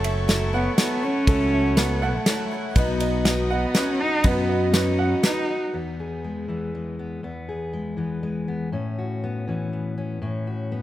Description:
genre	indie folk with a building arrangement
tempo	121 BPM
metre	3/4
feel	straight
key	E major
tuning	A4 = 440 Hz
part	picked twelve-string acoustic guitar	accompaniment	0.0-5.7 s	B2 to F#4	-27 LUFS	left 2 dB	none
part	warm studio string section	sustained chords	0.0-5.7 s	A4 to D#6	-35 LUFS	equal	none
part	warm upright piano	arpeggios	0.0-5.7 s	A4 to F#5	-29 LUFS	right 5 dB	slapback echo
part	fingered electric bass	bass	0.0-5.1 s	F#1 to F#2	-25 LUFS	equal	none
part	natural country drum kit	drums	0.0-5.4 s	kick drum, ride cymbal, snare drum	-24 LUFS	equal	none
part	dark cello	melody	0.5-5.6 s	A3 to D#4	-25 LUFS	equal	none
part	fingerpicked steel-string acoustic guitar	accompaniment	5.7-10.8 s	E2 to G#4	-27 LUFS	left 2 dB	none
room	light reverb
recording	none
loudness	-21 LUFS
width	side -14 dB against mid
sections	0.0-5.7 A section; 5.7-10.8 B section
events	none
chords	0.0 F#m7; 2.8 B; 5.7 E; 8.7 Aadd9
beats	0.29 0.78 | 1.27 1.77 2.27 | 2.76 3.25 3.75 | 4.25 4.74 5.24 | 5.73 6.23 6.73 | 7.23 7.73 8.22 | 8.72 9.22 9.72 | 10.22 10.71

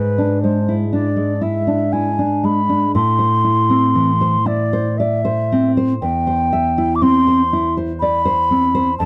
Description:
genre	romantic duo for flute and classical guitar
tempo	60 BPM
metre	3/4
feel	rubato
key	A minor, C major from 6.0 s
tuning	A4 = 441 Hz
part	baroque flute	melody	0.0-9.1 s	B4 to D6	-20 LUFS	equal	none
part	nylon-string guitar	accompaniment	0.0-9.1 s	E2 to E5	-19 LUFS	equal	none
room	little or no reverb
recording	dry, close 1970s-style studio recording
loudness	-17 LUFS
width	mono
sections	0.0-9.1 A section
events	none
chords	0.0 E7/G#; 2.9 Am; 6.0 C/E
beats	0.92 1.93 | 2.95 3.96 4.98 | 6.02 7.03 8.00 | 8.99

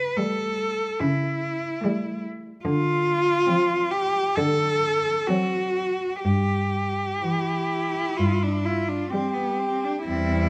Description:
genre	classical, lyrical piece for cello ensemble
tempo	61-75 BPM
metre	4/4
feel	rubato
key	unclear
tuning	A4 = 444 Hz
part	clear cello	melody	0.0-10.5 s	B3 to B4	-27 LUFS	equal	none
part	rich cello	second line	0.2-10.5 s	A3 to G4	-33 LUFS	equal	none
part	rich cello	accompaniment	0.2-10.5 s	E3 to G3	-31 LUFS	equal	none
part	rich cello	bass	1.0-10.5 s	E2 to D3	-28 LUFS	equal	none
room	moderate recital hall reverb, RT60 1.8 s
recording	close, detailed microphones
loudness	-24 LUFS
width	mono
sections	0.0-10.5 A section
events	none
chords	0.0 A7; 2.6 Dm7; 4.4 D7; 6.2 Em/G; 8.2 G7(no3)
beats	0.18 1.01 1.83 | 2.63 3.48 4.36 5.28 | 6.24 7.22 8.19 9.13 | 10.08

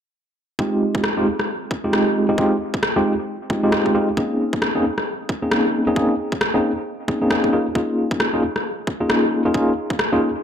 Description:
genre	UK garage, two-step garage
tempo	134 BPM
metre	4/4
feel	swing 60% on 16ths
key	F minor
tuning	A4 = 441 Hz
part	tine electric piano	stabs	0.6-10.3 s	Ab3 to Ab4	-19 LUFS	equal	medium tremolo, low-pass filter, dub echo
part	electronic kick drum	drums	0.6-10.0 s	none	-27 LUFS	equal	high-pass filter on kick, high-pass filter on room
part	electronic rim click	drums	1.0-10.1 s	none	-22 LUFS	left 1 dB	none
room	moderate plate reverb, RT60 1.5 s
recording	dark, warm production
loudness	-18 LUFS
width	side -8 dB against mid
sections	0.6-10.4 A section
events	none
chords	0.6 Fm9; 4.2 Bbm11; 7.5 Db69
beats	| 0.59 1.04 1.48 1.93 | 2.38 2.83 3.27 3.72 | 4.17 4.62 5.07 5.51 | 5.96 6.41 6.86 7.30 | 7.75 8.20 8.65 9.10 | 9.54 9.99

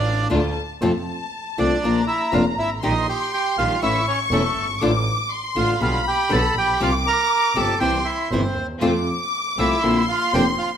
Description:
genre	tango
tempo	120 BPM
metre	4/4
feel	rubato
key	F major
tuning	A4 = 440 Hz
part	bandoneon	melody	0.0-10.7 s	A3 to Bb5	-22 LUFS	right 3 dB	none
part	warm studio violin section	second line	0.0-10.8 s	F5 to D6	-25 LUFS	left 3 dB	none
part	warm symphonic string section	stabs	0.0-0.5, 8.8-10.5 s	A3 to F4	-31 LUFS	equal	none
part	clear double bass	bass	0.0-10.5 s	E1 to F2	-25 LUFS	right 1 dB	none
part	nylon-string guitar	accompaniment	0.3-10.4 s	B2 to G4	-23 LUFS	left 2 dB	none
room	moderate large studio reverb, RT60 1.3 s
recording	close, detailed microphones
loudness	-18 LUFS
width	side -8 dB against mid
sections	0.8-10.8 A section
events	none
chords	0.0 Dm; 0.8 F; 1.8 Bb; 2.8 Eb/Bb; 3.8 A; 4.8 Dm/A; 5.8 G/B; 6.8 Csus4; 7.8 C; 8.8 F; 9.8 Bbadd9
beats	0.30 | 0.82 1.32 1.83 2.33 | 2.83 3.33 3.83 4.32 | 4.82 5.31 5.81 6.31 | 6.80 7.30 7.80 8.31 | 8.82 9.33 9.83 10.34

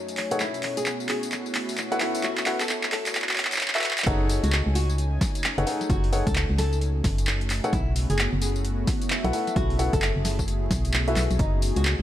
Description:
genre	UK garage, two-step garage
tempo	131 BPM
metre	4/4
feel	swing 62% on 16ths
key	F# dorian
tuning	A4 = 440 Hz
part	warm analog pad	sustained chords	0.0-12.0 s	F#2 to G#5	-36 LUFS	left 1 dB	chorus, sidechain pumping
part	warbly tape-like pad	texture	0.0-12.0 s	B3 to E5	-35 LUFS	equal	chorus, built-in reverb, sidechain pumping
part	punchy analog drum machine	drums	0.1-12.0 s	handclaps, hi-hat, snare drum, tambourine	-27 LUFS	equal	overdrive
part	dark baby grand piano	stabs	0.3-11.2 s	D#4 to F#5	-29 LUFS	left 2 dB	dub echo
part	flamenco guitar	melody	0.4-11.9 s	D#4 to A4	-34 LUFS	left 1 dB	dub echo
part	organ-like FM bass	bass	4.1-12.0 s	F#1 to C#2	-25 LUFS	equal	none
part	electronic kick drum	drums	4.1-11.5 s	none	-27 LUFS	equal	overdrive
room	light reverb, digital ambience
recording	vinyl crackle, high-pass filter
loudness	-22 LUFS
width	side -12 dB against mid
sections	0.0-4.1 A section; 4.1-12.0 B section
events	build-up 0.0-4.1; drum fill 0.0-4.1; filter sweep 0.0-4.1; drop 4.1-12.0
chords	0.4 B7sus4; 4.1 F#m69; 7.7 B7sus4; 11.4 F#m69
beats	| 0.40 0.86 1.32 1.78 | 2.23 2.69 3.15 3.61 | 4.07 4.52 4.98 5.44 | 5.90 6.36 6.81 7.27 | 7.73 8.19 8.65 9.10 | 9.56 10.02 10.48 10.94 | 11.39 11.85

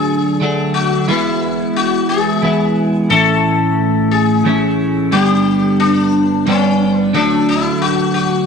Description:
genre	rock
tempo	59 BPM (dotted quarters)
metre	6/8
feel	straight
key	unclear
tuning	A4 = 440 Hz
part	sitar	melody	0.0-8.5 s	C#4 to A4	-17 LUFS	left 6 dB	slapback echo
part	twelve-string electric guitar	riff	0.0-8.5 s	G2 to E4	-14 LUFS	right 1 dB	phaser, double-tracked left and right
room	light reverb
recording	none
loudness	-12 LUFS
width	side -6 dB against mid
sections	0.0-8.5 A section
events	none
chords	0.0 D; 1.1 E; 3.1 A; 5.1 G; 7.1 D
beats	0.07 | 1.08 2.10 | 3.11 4.12 | 5.13 6.14 | 7.14 8.15

